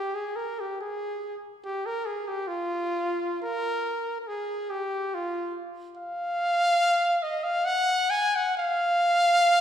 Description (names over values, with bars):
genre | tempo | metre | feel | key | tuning
classical, free, expressive piece for unaccompanied trumpet | 69 BPM | 3/4 | uneven beats, rubato | F minor | A4 = 439 Hz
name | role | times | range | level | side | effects
warm trumpet | solo | 0.0-9.6 s | F4 to Ab5 | -24 LUFS | equal | none
room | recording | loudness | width
wet scoring stage reverb, RT60 1.9 s | heard from further back in the room | -24 LUFS | side -9 dB against mid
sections
0.0-9.6 A section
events
none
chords
none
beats
| 0.78 1.63 2.47 | 3.40 4.26 5.11 | 5.96 6.80 7.67 | 8.58 9.45